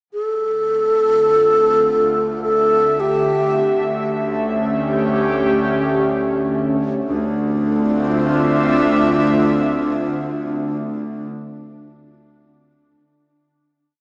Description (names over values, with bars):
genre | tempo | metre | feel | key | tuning
ambient | 52 BPM | 3/4 | straight | D minor | A4 = 439 Hz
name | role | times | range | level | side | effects
breathy wooden-headed alto flute | melody | 0.1-11.3 s | D4 to A4 | -20 LUFS | equal | tape echo
clear chamber double bass section | bass | 0.1-11.3 s | D2 | -29 LUFS | equal | none
organ-like drone | drone | 1.1-11.4 s | D3 | -37 LUFS | equal | none
airy breathy pad | sustained chords | 0.2-11.3 s | D3 to E5 | -22 LUFS | equal | chorus
room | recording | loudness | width
wet lush hall reverb, RT60 2.9 s | small speaker sound | -18 LUFS | mono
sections
0.1-7.1 A section; 7.1-10.5 final chord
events
fade-in on analog synth pad 0.1-7.1; fade-in on double bass section 0.1-7.1; fade-out on synth drone 0.1-7.1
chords
0.1 Dm7; 3.6 A7/D; 7.1 Dm7